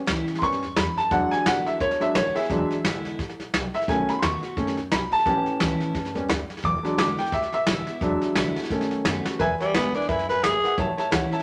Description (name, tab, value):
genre	rockabilly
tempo	174 BPM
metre	4/4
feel	swing 58% on 8ths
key	E mixolydian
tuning	A4 = 439 Hz
part	picked steel-string acoustic guitar	accompaniment	0.0-11.4 s	E2 to F#4	-35 LUFS	equal	none
part	upright bass	bass	0.1-11.4 s	E1 to F#2	-36 LUFS	equal	none
part	vintage brush drum kit	drums	0.1-11.4 s	hi-hat, kick drum, snare drum	-30 LUFS	equal	none
part	clear upright piano	accompaniment	0.4-11.4 s	D#3 to D6	-27 LUFS	equal	none
part	growling tenor saxophone	melody	9.6-10.8 s	G3 to B4	-25 LUFS	equal	none
room	moderate studio reverb, RT60 0.8 s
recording	none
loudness	-24 LUFS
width	mono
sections	0.0-9.4 A section; 9.4-11.4 B section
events	upright piano solo 0.0-9.4; drum fill 9.2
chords	0.0 A7; 1.1 E7; 3.9 B7; 5.3 A7; 6.6 E7; 8.7 B7; 9.4 E7; 10.8 A7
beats	0.08 0.42 0.77 | 1.11 1.46 1.80 2.15 | 2.50 2.84 3.19 3.53 | 3.88 4.22 4.57 4.91 | 5.26 5.61 5.95 6.29 | 6.64 6.99 7.33 7.67 | 8.02 8.37 8.71 9.06 | 9.40 9.75 10.09 10.44 | 10.78 11.13